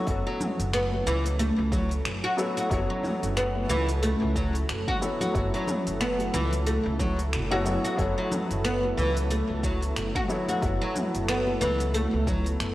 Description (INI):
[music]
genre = organic downtempo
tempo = 91 BPM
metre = 4/4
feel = swing 58% on 16ths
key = F# minor pentatonic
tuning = A4 = 440 Hz
[part]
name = felt-muted upright piano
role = accompaniment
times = 0.0-12.7 s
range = F#3 to C#5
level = -33 LUFS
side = left 2 dB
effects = sidechain pumping, ping-pong delay, shimmer reverb
[part]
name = warm analog pad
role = sustained chords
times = 0.0-12.7 s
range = F#3 to A4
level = -34 LUFS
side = right 1 dB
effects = chorus, sidechain pumping, shimmer reverb
[part]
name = oud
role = arpeggios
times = 0.0-12.5 s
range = E3 to F#4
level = -29 LUFS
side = equal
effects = ping-pong delay, shimmer reverb
[part]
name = upright bass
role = bass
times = 0.1-12.7 s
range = F#1 to C#2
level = -29 LUFS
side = equal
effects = none
[part]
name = electronic kick drum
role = drums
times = 0.1-12.4 s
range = none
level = -31 LUFS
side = equal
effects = studio reverb
[part]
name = organic electronic drum kit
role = drums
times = 0.1-12.7 s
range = finger snaps, hi-hat, shaker, toms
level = -35 LUFS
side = equal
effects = overdrive, studio reverb
[part]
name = congas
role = percussion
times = 0.1-12.4 s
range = none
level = -38 LUFS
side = left 1 dB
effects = none
[sound]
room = moderate concert hall reverb, RT60 2.1 s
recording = worn, warbling old tape, cassette tape, warbly pitch drift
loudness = -24 LUFS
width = side -16 dB against mid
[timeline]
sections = 0.0-12.7 A section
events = none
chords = 0.0 F#m7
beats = | 0.08 0.73 1.39 2.05 | 2.71 3.37 4.03 4.69 | 5.35 6.01 6.67 7.33 | 7.99 8.65 9.31 9.97 | 10.62 11.29 11.94 12.60